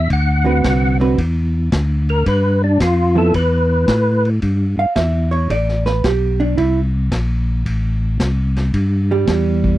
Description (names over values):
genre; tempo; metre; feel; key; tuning
soul jazz organ trio; 111 BPM; 4/4; swing 68% on 8ths; unclear; A4 = 440 Hz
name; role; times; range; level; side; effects
percussive tonewheel organ; melody; 0.0-4.3 s; D4 to F#5; -18 LUFS; left 1 dB; slow rotary speaker, chorus vibrato
tonewheel organ; bass; 0.0-9.8 s; A1 to A2; -16 LUFS; equal; overdrive, chorus vibrato, stopped rotary speaker
vintage drum kit; drums; 0.1-9.7 s; hi-hat, kick drum, ride cymbal, snare drum; -23 LUFS; left 1 dB; none
vintage hollow-body jazz guitar; accompaniment; 0.4-9.8 s; D3 to F5; -18 LUFS; right 4 dB; none
room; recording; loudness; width
little or no reverb; dry, close 1970s-style studio recording; -14 LUFS; side -15 dB against mid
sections
0.0-4.4 A section; 4.4-9.8 A section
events
tonewheel organ solo 0.0-4.4; hollow-body jazz guitar solo 4.4-9.8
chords
0.1 D13; 2.3 G13; 4.4 G69; 6.6 Am; 8.7 Em